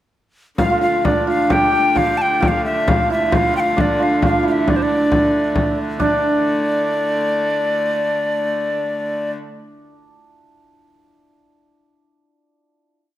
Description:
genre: medieval dance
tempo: 130-145 BPM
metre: 3/4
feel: straight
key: D minor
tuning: A4 = 440 Hz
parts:
  - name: hollow alto recorder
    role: melody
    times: 0.6-9.3 s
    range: C5 to A5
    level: -19 LUFS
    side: left 2 dB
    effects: none
  - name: hammered dulcimer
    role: second line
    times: 0.6-10.0 s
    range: D4 to G4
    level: -20 LUFS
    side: right 3 dB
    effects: none
  - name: clear hurdy-gurdy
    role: drone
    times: 0.6-9.3 s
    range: D3 to A3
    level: -26 LUFS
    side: left 1 dB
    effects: none
  - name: frame drum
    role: percussion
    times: 0.6-6.2 s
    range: none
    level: -21 LUFS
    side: left 1 dB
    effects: none
room: moderate recital hall reverb, RT60 1.4 s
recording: none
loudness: -15 LUFS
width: side -13 dB against mid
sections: 0.6-6.0 A section; 6.0-8.5 final chord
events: speeding up 0.6-8.5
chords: none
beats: | 0.59 1.05 1.51 | 1.97 2.43 2.88 | 3.33 3.79 4.23 | 4.68 5.12 5.56 | 6.00 6.43 6.86 | 7.29 7.71 8.13

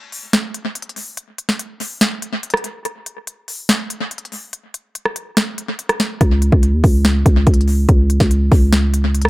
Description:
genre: hip hop, trap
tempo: 143 BPM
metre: 4/4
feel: half-time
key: unclear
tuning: A4 = 440 Hz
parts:
  - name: trap drum kit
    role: drums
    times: 0.1-9.3 s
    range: hi-hat, kick drum, rim click, snare drum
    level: -16 LUFS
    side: equal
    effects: analog delay
  - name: growling 808-style bass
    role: bass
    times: 6.2-9.3 s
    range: C#2 to D#2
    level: -14 LUFS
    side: equal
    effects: none
room: digital ambience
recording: echo-heavy mix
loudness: -14 LUFS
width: side -18 dB against mid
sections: 0.0-9.3 A section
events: break 0.0-6.2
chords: none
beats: 0.33 0.75 | 1.17 1.59 2.01 2.43 | 2.85 3.27 3.69 4.11 | 4.53 4.95 5.37 5.79 | 6.21 6.63 7.05 7.47 | 7.89 8.31 8.73 9.14

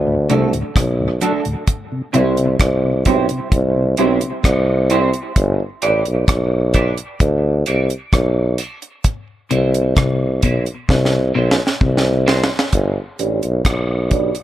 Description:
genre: dub reggae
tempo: 65 BPM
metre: 4/4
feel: straight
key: G major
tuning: A4 = 439 Hz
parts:
  - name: clean electric guitar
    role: riff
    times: 0.0-2.4, 9.5-12.1 s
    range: B2 to D3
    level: -23 LUFS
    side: left 4 dB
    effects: dub echo
  - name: warm tuba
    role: bass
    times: 0.0-14.3 s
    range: G1 to D2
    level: -17 LUFS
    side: equal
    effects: none
  - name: mellow tonewheel organ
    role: accompaniment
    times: 0.1-12.6 s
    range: D2 to E4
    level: -25 LUFS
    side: left 2 dB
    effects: chorus vibrato, slow rotary speaker, high-pass filter, dub echo
  - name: electric guitar at the edge of break-up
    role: accompaniment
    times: 0.3-14.4 s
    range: A3 to D5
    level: -22 LUFS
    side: right 6 dB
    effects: lush chorus, high-pass filter, low-pass filter, dub echo
  - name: deep reggae drum kit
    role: drums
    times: 0.3-14.4 s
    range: hi-hat, kick drum, rim click, snare drum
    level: -18 LUFS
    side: equal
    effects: none
room: light reverb, studio reverb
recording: none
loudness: -15 LUFS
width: side -13 dB against mid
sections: 0.0-12.7 A section; 12.7-14.4 B section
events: filter sweep 1.7-12.7; drum fill 10.9-12.7; filter sweep on clean electric guitar 12.7-14.4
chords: 0.0 D; 1.7 C; 5.4 G; 7.2 D; 9.0 C; 12.7 G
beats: 0.76 | 1.68 2.60 3.52 4.44 | 5.36 6.28 7.21 8.13 | 9.05 9.97 10.89 11.81 | 12.73 13.65

